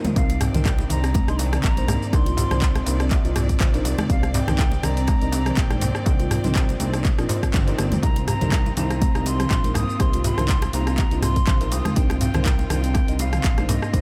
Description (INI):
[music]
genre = afro house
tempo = 122 BPM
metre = 4/4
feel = swing 55% on 16ths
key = C minor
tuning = A4 = 439 Hz
[part]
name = clear studio string section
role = sustained chords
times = 0.0-14.0 s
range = C3 to D5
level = -35 LUFS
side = equal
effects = sidechain pumping
[part]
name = congas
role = percussion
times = 0.0-13.8 s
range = none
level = -33 LUFS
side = equal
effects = none
[part]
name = kalimba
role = arpeggios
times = 0.1-14.0 s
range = G3 to C5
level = -33 LUFS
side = equal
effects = vintage 12-bit sampler grit, sidechain pumping, analog delay
[part]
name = house drum kit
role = drums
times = 0.1-14.0 s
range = handclaps, hi-hat, rim click, shaker, toms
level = -31 LUFS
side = equal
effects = overdrive, small room ambience
[part]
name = silver concert flute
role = melody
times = 0.2-14.0 s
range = Eb5 to Eb6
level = -34 LUFS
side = equal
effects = analog delay
[part]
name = deep mellow chord stab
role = stabs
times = 0.2-14.0 s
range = D4 to Eb5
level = -36 LUFS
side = equal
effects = chorus, sidechain pumping, analog delay
[part]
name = smooth synth bass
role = bass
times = 0.2-14.0 s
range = G1 to C2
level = -27 LUFS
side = equal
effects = sidechain pumping
[part]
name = electronic kick drum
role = drums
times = 0.2-14.0 s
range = none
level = -23 LUFS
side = equal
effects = overdrive, small room ambience
[part]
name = darbuka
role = percussion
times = 0.2-14.0 s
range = none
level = -32 LUFS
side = equal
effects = none
[sound]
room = light reverb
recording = none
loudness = -21 LUFS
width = mono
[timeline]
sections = 0.0-14.0 A section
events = break 0.0; drum fill 0.0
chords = 0.0 Cm9